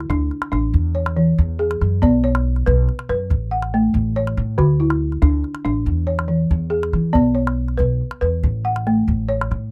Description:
west african traditional, West African string and xylophone music; 94 BPM (dotted quarters); 12/8; straight; A4 = 440 Hz
balafon; arpeggios; 0.0-9.7 s; D3 to F#5; -22 LUFS; equal
upright bass; bass; 0.0-9.7 s; A1 to E3; -23 LUFS; equal
calabash; percussion; 0.0-9.6 s; -23 LUFS; equal
little or no reverb; dry, close 1970s-style studio recording; -19 LUFS; mono
0.0-9.7 A section
0.0 D; 0.7 E; 2.0 Bm; 3.3 A; 4.6 D; 5.9 E; 7.1 Bm; 8.4 A

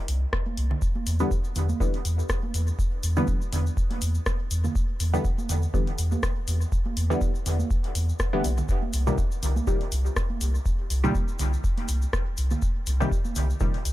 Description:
dub techno; 122 BPM; 4/4; swing 55% on 16ths; A4 = 441 Hz
soft dub sub bass; bass; 0.1-13.9 s; B1 to E2; -24 LUFS; equal; sidechain pumping
deep house drum kit; drums; 0.1-13.9 s; hi-hat, rim click; -34 LUFS; left 1 dB; dub echo
electronic kick drum; drums; 0.3-13.7 s; -27 LUFS; equal
congas; percussion; 0.5-13.5 s; -36 LUFS; right 6 dB; overdrive, sidechain pumping on perc, dub echo
tube shaker; percussion; 0.8-13.9 s; -40 LUFS; left 5 dB
filtered dub chord stab; stabs; 1.2-13.7 s; Bb2 to B3; -31 LUFS; equal; chorus, phaser, sidechain pumping, dub echo
digital ambience; -23 LUFS; side -15 dB against mid
0.0-13.9 A section
0.0 N.C.; 0.8 Em7; 8.7 Cm7

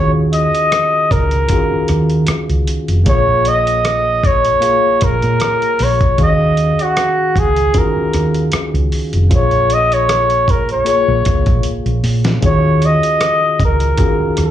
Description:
lush 1970s-style soul; 77 BPM; 4/4; swing 54% on 16ths; Eb minor; A4 = 441 Hz
warm flugelhorn; melody; 0.0-14.5 s; Gb4 to Eb5; -14 LUFS; equal; plate reverb, slapback echo
bright tine electric piano; accompaniment; 0.0-14.5 s; Eb3 to F5; -21 LUFS; left 2 dB; medium stereo tremolo, plate reverb, slapback echo
hollow-body short-scale fingered electric bass; bass; 0.0-14.5 s; F1 to Bb2; -16 LUFS; right 1 dB; tube saturation
dusty soul sampler-style drum kit; drums; 0.3-14.5 s; hi-hat, kick drum, rim click, snare drum; -18 LUFS; equal; overdrive
light reverb; live gig heard through the venue's PA, club reverb; -12 LUFS; side -11 dB against mid
0.0-14.5 A section
drum fill 11.6-12.4
0.0 Ebm11; 3.1 Bbm7; 6.2 Ebm11; 9.3 Bbm7; 12.4 Ebm11

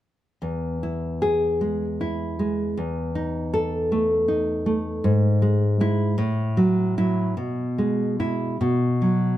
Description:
romantic piece for solo classical guitar; 52 BPM (dotted quarters); 6/8; uneven beats, rubato; E major; A4 = 440 Hz
nylon-string guitar; solo; 0.4-9.4 s; E2 to A4; -21 LUFS; equal
moderate recital hall reverb, RT60 1.6 s; close, detailed microphones; -21 LUFS; side -13 dB against mid
0.4-9.4 A section
0.4 E; 2.8 Esus4; 5.0 E/G#; 6.2 F#m7/A; 7.4 E/B; 8.6 B5

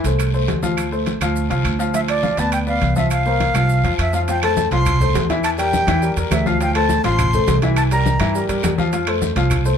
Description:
latin, salsa; 206 BPM; 4/4; straight; F major; A4 = 439 Hz
clear grand piano; accompaniment; 0.0-9.8 s; E3 to F5; -21 LUFS; left 3 dB
upright bass; bass; 0.0-9.8 s; A1 to G2; -20 LUFS; right 1 dB
congas; percussion; 0.0-9.8 s; -25 LUFS; left 2 dB
guiro; percussion; 0.0-9.8 s; -34 LUFS; left 6 dB
maracas; percussion; 0.0-9.8 s; -36 LUFS; right 5 dB
timbales; percussion; 0.0-9.7 s; -28 LUFS; right 6 dB
claves; percussion; 0.2-9.7 s; -32 LUFS; right 6 dB
breathy bright concert flute; melody; 1.9-8.5 s; D5 to C6; -21 LUFS; equal; plate reverb
wet small room reverb, RT60 0.5 s; heard from further back in the room; -16 LUFS; side -8 dB against mid
0.0-4.3 A section; 4.3-9.8 B section
0.0 F; 1.9 Dm13; 3.1 C7sus4; 4.3 Fmaj7; 5.4 Gm13; 6.6 Dm9; 7.8 C7; 8.9 F

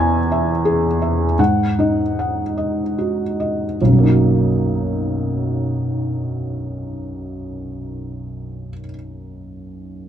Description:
neoclassical minimalist piano; 75 BPM; 3/4; rubato; B major; A4 = 440 Hz
felt-muted upright piano; solo; 0.0-10.1 s; B1 to G#5; -18 LUFS; equal
light reverb; dark, warm production; -16 LUFS; side -9 dB against mid
0.0-3.8 A section; 3.8-8.6 B section
slowing down 0.0-3.8
0.0 E; 1.4 G#5; 3.8 Bmaj7

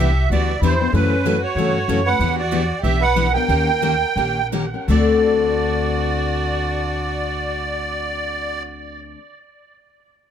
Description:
acoustic string swing (jazz manouche); 161-191 BPM; 4/4; swing 59% on 8ths; D mixolydian; A4 = 440 Hz
musette accordion; melody; 0.0-8.6 s; B4 to G5; -22 LUFS; right 4 dB; tape echo
warm violin; second line; 0.0-8.6 s; C#4 to B4; -27 LUFS; right 2 dB
picked steel-string acoustic guitar; accompaniment; 0.0-9.2 s; C#3 to Bb4; -23 LUFS; left 7 dB
picked steel-string acoustic guitar; accompaniment; 0.0-9.2 s; D3 to B4; -28 LUFS; right 2 dB
upright bass; bass; 0.0-9.1 s; Bb1 to G2; -22 LUFS; equal
light reverb; close, detailed microphones; -17 LUFS; side -8 dB against mid
0.0-4.9 A section; 4.9-7.9 B section
slowing down 2.2-4.9
0.0 Em9; 0.9 F#m7; 2.2 Em9; 3.5 Eb7; 4.9 D7

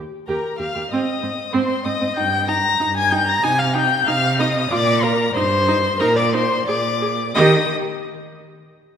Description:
quick classical-period movement for string quartet; 93 BPM; 2/4; uneven beats; Eb major; A4 = 440 Hz
rich viola; accompaniment; 0.0-7.7 s; C4 to Ab4; -24 LUFS; right 3 dB
rich cello; bass; 0.0-7.7 s; Eb2 to Eb3; -23 LUFS; right 4 dB
dark violin; melody; 0.3-7.7 s; Bb5 to Bb6; -22 LUFS; left 7 dB
dark violin; second line; 0.3-7.7 s; Bb4 to Bb5; -21 LUFS; left 2 dB
wet concert hall reverb, RT60 2.1 s; -16 LUFS; side -8 dB against mid
0.0-7.4 A section; 7.4-8.7 B section
0.0 Eb; 0.9 Ab; 2.2 Eb/G; 3.4 Cmadd11; 4.7 Bb; 5.4 Eb/G; 6.0 Eb5/Bb; 6.7 Bb; 7.4 Eb

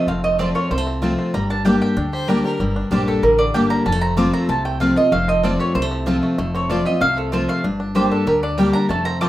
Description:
bluegrass; 190 BPM; 4/4; straight; G minor; A4 = 440 Hz
mandolin; melody; 0.0-9.3 s; A4 to D6; -20 LUFS; right 1 dB
picked steel-string acoustic guitar; accompaniment; 0.0-9.3 s; F2 to G4; -19 LUFS; left 1 dB
bluegrass banjo; arpeggios; 0.0-9.3 s; D3 to G4; -29 LUFS; right 2 dB
upright bass; bass; 0.1-9.3 s; F1 to D2; -26 LUFS; equal
mandolin; stabs; 0.4-9.3 s; Bb3 to A5; -28 LUFS; right 5 dB
clear fiddle; second line; 2.1-2.6 s; Bb4 to C5; -27 LUFS; left 2 dB; tape echo
wet small room reverb, RT60 0.5 s; rough home demo mix; -16 LUFS; side -14 dB against mid
0.0-2.6 A section; 2.6-9.3 A section
0.0 F; 1.3 Gm; 3.9 F; 7.6 Gm

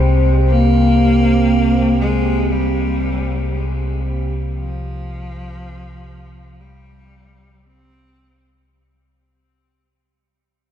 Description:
dark ambient drone; free time; A4 = 440 Hz
deep dark ambient pad; sustained chords; 0.0-8.7 s; C4 to G5; -23 LUFS; right 1 dB; chorus, built-in reverb
quartz singing bowl; arpeggios; 0.0-3.5 s; G4; -28 LUFS; right 4 dB; ping-pong delay
deep rumbling drone; drone; 0.0-8.8 s; C2 to C3; -18 LUFS; equal; built-in reverb, phaser
bright cello; melody; 0.5-8.5 s; F3 to C4; -19 LUFS; equal; ping-pong delay
moderate huge ambient reverb, RT60 7.2 s; dark, warm production; -14 LUFS; side -9 dB against mid
0.0-8.7 A section
fade-out 0.0-8.7
0.0 C5

